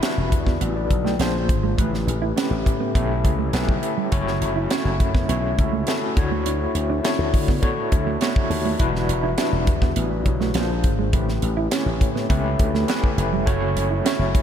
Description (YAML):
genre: polished 1980s jazz-funk pop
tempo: 103 BPM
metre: 4/4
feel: straight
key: unclear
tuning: A4 = 439 Hz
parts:
  - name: overdriven tine electric piano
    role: accompaniment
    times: 0.0-14.4 s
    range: F#3 to A5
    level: -24 LUFS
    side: left 2 dB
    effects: medium tremolo, wide subtle chorus, slapback echo
  - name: mellow electric guitar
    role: riff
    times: 0.0-14.4 s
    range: G3 to F#4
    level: -29 LUFS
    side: right 7 dB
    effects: lush chorus
  - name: crisp fusion drum kit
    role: drums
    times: 0.0-14.4 s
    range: hi-hat, kick drum, snare drum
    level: -23 LUFS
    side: equal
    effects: none
  - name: slap bass with an envelope filter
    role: bass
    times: 0.2-14.4 s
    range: E1 to D3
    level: -24 LUFS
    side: equal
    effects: none
room: light reverb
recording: none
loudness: -19 LUFS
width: side -9 dB against mid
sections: 0.0-14.4 A section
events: tine electric piano fill 3.2-4.1, 7.6-8.8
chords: 0.0 Em7; 1.2 A#9; 1.8 A9; 4.1 F#m7; 6.2 Dmaj9; 8.8 Em7; 10.6 A#9; 11.1 A9; 13.5 F#m7